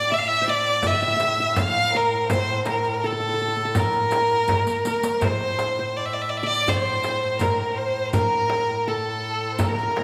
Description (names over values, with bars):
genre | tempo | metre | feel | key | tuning
Arabic maqam ensemble | 82 BPM | 4/4 | straight | A maqam kurd | A4 = 441 Hz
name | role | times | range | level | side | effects
clear violin | melody | 0.0-10.0 s | A4 to F5 | -25 LUFS | equal | none
clear studio violin section | second line | 0.0-10.0 s | A4 to F5 | -32 LUFS | equal | none
qanun | second line | 0.0-10.0 s | A4 to F5 | -34 LUFS | equal | none
warm duduk | drone | 0.0-10.0 s | A2 | -35 LUFS | equal | none
darbuka | percussion | 0.1-10.0 s | none | -32 LUFS | equal | none
frame drum | percussion | 0.8-10.0 s | none | -33 LUFS | equal | none
riq | percussion | 0.8-9.9 s | none | -38 LUFS | equal | none
room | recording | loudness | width
wet recital hall reverb, RT60 1.6 s | recorded in a church or concert hall | -23 LUFS | mono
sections
0.0-10.0 A section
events
drum fill 4.5-5.2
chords
none